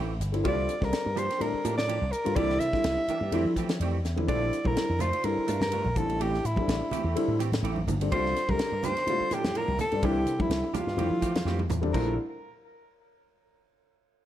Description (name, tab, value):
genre	electric jazz fusion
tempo	125 BPM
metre	4/4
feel	swing 54% on 16ths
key	Bb lydian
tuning	A4 = 441 Hz
part	semi-hollow electric guitar	stabs	0.0-12.1 s	E3 to G4	-36 LUFS	right 6 dB	ensemble chorus
part	slap bass with an envelope filter	bass	0.0-12.2 s	G1 to F3	-30 LUFS	equal	none
part	tight funk drum kit	drums	0.2-12.1 s	crash cymbal, hi-hat, kick drum, ride cymbal, snare drum, toms	-34 LUFS	equal	none
part	warm concert grand piano	accompaniment	0.3-12.2 s	D3 to G5	-30 LUFS	left 2 dB	none
part	warm soprano saxophone	melody	0.5-12.2 s	E4 to E5	-30 LUFS	right 1 dB	tape echo
part	congas	percussion	4.6-12.2 s	none	-36 LUFS	right 2 dB	none
room	moderate large studio reverb, RT60 0.9 s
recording	none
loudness	-25 LUFS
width	side -12 dB against mid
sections	0.0-11.9 A section; 11.9-13.9 B section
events	grand piano fill 3.3-4.3; drum fill 4.0, 11.5-11.9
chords	0.4 C9sus4; 2.4 C9; 3.3 Fmaj9; 4.3 Bbmaj7; 6.0 Am7; 8.1 C9sus4; 10.0 C9; 11.0 Fmaj9; 11.9 Bbmaj7